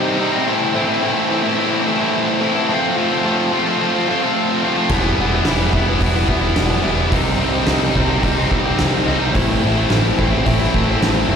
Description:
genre	quiet-loud alternative rock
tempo	108 BPM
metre	4/4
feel	straight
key	unclear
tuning	A4 = 440 Hz
part	high-gain distorted guitar	riff	0.0-11.4 s	A2 to F4	-16 LUFS	equal	distortion, slapback echo
part	growling fingered electric bass	bass	4.9-11.4 s	E1 to C2	-20 LUFS	equal	overdrive
part	oversized low-tuned drum kit	drums	4.9-11.2 s	crash cymbal, hi-hat, kick drum, snare drum	-21 LUFS	equal	none
room	little or no reverb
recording	live gig heard through the venue's PA, recital hall reverb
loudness	-15 LUFS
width	side -7 dB against mid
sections	0.0-11.4 A section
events	none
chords	0.4 Am; 2.7 F; 4.9 Em; 7.1 Cm; 9.4 Am

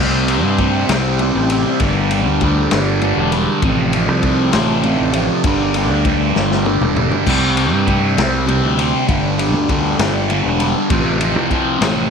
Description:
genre	psychedelic rock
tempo	66 BPM (dotted quarters)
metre	6/8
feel	straight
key	G dorian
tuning	A4 = 439 Hz
part	combo organ	sustained chords	0.0-7.3 s	F3 to D5	-27 LUFS	right 11 dB	lush chorus
part	thick fuzz guitar	riff	0.0-12.1 s	F2 to C4	-16 LUFS	equal	distortion, phaser
part	fuzz fingered electric bass	bass	0.0-12.1 s	E1 to G2	-19 LUFS	right 1 dB	overdrive
part	vintage drum kit	drums	0.3-12.0 s	crash cymbal, kick drum, ride cymbal, snare drum, toms	-21 LUFS	left 3 dB	none
part	congas	percussion	0.6-11.9 s	none	-30 LUFS	left 10 dB	none
room	light reverb, small room ambience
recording	1960s-style stereo with parts hard left and right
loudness	-13 LUFS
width	side -6 dB against mid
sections	0.0-7.3 A section; 7.3-12.1 A section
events	drum fill 6.4-7.3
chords	0.0 Cadd9; 1.8 Gm; 3.6 F6/A; 5.5 Gm; 7.3 Csus2; 9.1 G5; 10.9 F/A

